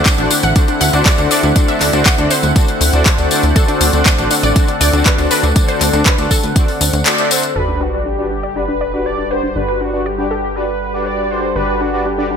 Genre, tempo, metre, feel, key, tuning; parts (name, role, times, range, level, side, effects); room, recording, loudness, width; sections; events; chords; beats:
progressive house; 120 BPM; 4/4; straight; G major; A4 = 440 Hz
lush unison pad; sustained chords; 0.0-12.4 s; D3 to F#5; -20 LUFS; equal; chorus, sidechain pumping
plucky analog bass; bass; 0.0-12.4 s; G1 to D2; -19 LUFS; equal; sidechain pumping
wide unison pluck; arpeggios; 0.1-12.4 s; D4 to F#5; -21 LUFS; equal; cassette tape, sidechain pumping, dub echo
electronic kick drum; drums; 0.1-6.7 s; -13 LUFS; equal; overdrive
house drum kit; drums; 0.1-7.5 s; handclaps, hi-hat; -18 LUFS; left 2 dB; overdrive, sidechain pumping on hats, low-pass filter on hats, low-pass filter on snare
tambourine; percussion; 0.1-7.5 s; -22 LUFS; left 5 dB
soft supersaw; stabs; 0.2-12.3 s; D4 to E5; -20 LUFS; left 2 dB; sidechain pumping, low-pass filter, dub echo
wide unison lead; melody; 7.1-12.4 s; F#4 to D5; -20 LUFS; equal; lush chorus, vintage 12-bit sampler grit, dub echo
sub drop; sound effects; 7.6-9.6 s; -25 LUFS; right 1 dB
light reverb; -12 LUFS; side -7 dB against mid
0.0-7.6 A section; 7.6-12.4 B section
band accent 7.1; impact 7.6-9.6; filter sweep on supersaw synth 7.6-12.4
0.0 D7; 7.6 Gmaj7
0.06 0.56 1.06 | 1.56 2.06 2.56 3.06 | 3.56 4.06 4.56 5.06 | 5.56 6.06 6.56 7.06 | 7.56 8.06 8.56 9.06 | 9.56 10.06 10.56 11.06 | 11.56 12.06